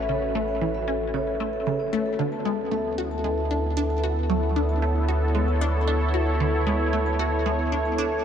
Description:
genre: ambient, sequencer-driven space music.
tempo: 114 BPM.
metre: 4/4.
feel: straight.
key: unclear.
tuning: A4 = 439 Hz.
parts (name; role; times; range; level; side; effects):
sweeping resonant pad; sustained chords; 0.0-8.2 s; B3 to C#5; -29 LUFS; right 1 dB; chorus.
vibraphone with medium mallets; arpeggios; 0.0-8.2 s; A4 to A5; -28 LUFS; left 2 dB; auto-pan, tape echo.
round analog bass; bass; 0.0-8.2 s; A1 to D2; -26 LUFS; right 1 dB; none.
resonant blip pluck; riff; 0.1-8.1 s; C#3 to F#4; -29 LUFS; equal; phaser, lush chorus, tape echo.
room: moderate huge ambient reverb, RT60 8.0 s.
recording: dark, warm production.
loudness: -22 LUFS.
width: side -8 dB against mid.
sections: 0.0-8.2 A section.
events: fade-in on analog synth pad 0.0-8.2.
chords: 0.0 Aadd9; 2.2 Dsus2.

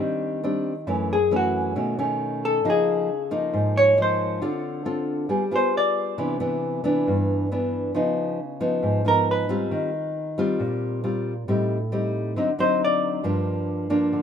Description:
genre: bossa nova.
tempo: 136 BPM.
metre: 4/4.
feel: straight.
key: unclear.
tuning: A4 = 440 Hz.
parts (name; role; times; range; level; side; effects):
nylon-string guitar; accompaniment; 0.0-14.2 s; F#2 to A4; -23 LUFS; equal; none.
vintage hollow-body jazz guitar; melody; 1.1-6.2, 9.1-9.7, 12.6-13.2 s; F#4 to D5; -21 LUFS; left 1 dB; none.
room: light reverb.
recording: minimal, uncompressed stereo recording.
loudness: -21 LUFS.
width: side -8 dB against mid.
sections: 0.0-14.2 A section.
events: hollow-body jazz guitar solo 0.0-14.2.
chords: 0.0 Abmaj7#11 (rootless); 0.9 F#m7; 1.8 B9; 2.6 Db69; 4.4 Dm7; 5.3 G7b9; 6.2 Cmaj9; 7.9 Db9; 9.7 Eb69; 11.5 Am7b5; 12.4 D7b9; 13.2 Gm7.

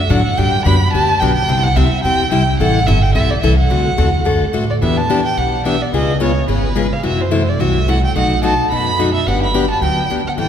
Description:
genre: acoustic string swing (jazz manouche).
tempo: 216 BPM.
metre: 4/4.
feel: swing 56% on 8ths.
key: E minor from 4.8 s.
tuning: A4 = 436 Hz.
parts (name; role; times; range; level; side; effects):
warm violin; melody; 0.0-10.5 s; B4 to B5; -18 LUFS; right 2 dB; none.
upright bass; bass; 0.0-10.5 s; G1 to A2; -17 LUFS; right 1 dB; none.
picked plugged-in steel-string acoustic guitar; accompaniment; 0.1-10.5 s; B2 to A4; -17 LUFS; left 3 dB; none.
room: wet church reverb, RT60 2.7 s.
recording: recorded in a church or concert hall.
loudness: -13 LUFS.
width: side -9 dB against mid.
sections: 0.0-4.8 A section; 4.8-10.5 B section.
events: none.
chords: 0.4 Gmaj7; 1.5 C; 2.6 Am7; 3.7 D7; 4.8 Em7; 5.9 C#7; 7.0 F#m7b5; 8.2 B7; 9.3 Gmaj7.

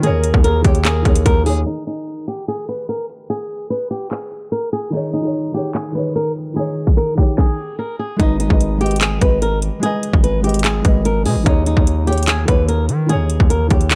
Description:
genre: hip hop, trap.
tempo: 147 BPM.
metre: 4/4.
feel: half-time.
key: G# harmonic minor.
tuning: A4 = 439 Hz.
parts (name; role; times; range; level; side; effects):
flamenco guitar; melody; 0.0-14.0 s; D#4 to B4; -24 LUFS; equal; low-pass filter.
gliding portamento lead; second line; 0.0-1.2 s; G#4 to A#4; -28 LUFS; equal; chorus, phaser, tape echo.
felt-muted upright piano; accompaniment; 0.0-1.7, 4.9-14.0 s; D#3 to D#5; -25 LUFS; equal; low-pass filter.
distorted 808-style bass; bass; 0.0-1.6, 8.2-14.0 s; G#1 to D#3; -20 LUFS; equal; distortion.
trap drum kit; drums; 0.0-14.0 s; handclaps, hi-hat, kick drum, snare drum; -18 LUFS; equal; none.
room: digital ambience.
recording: low-pass filter.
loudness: -17 LUFS.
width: mono.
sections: 0.0-1.7 A section; 1.7-8.2 B section; 8.2-14.0 C section.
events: filter sweep 1.7-8.2; stop 7.4-8.2.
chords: 0.0 D#7sus4; 1.7 N.C.; 4.9 D#7sus4; 8.2 G#m; 11.5 D#7sus4.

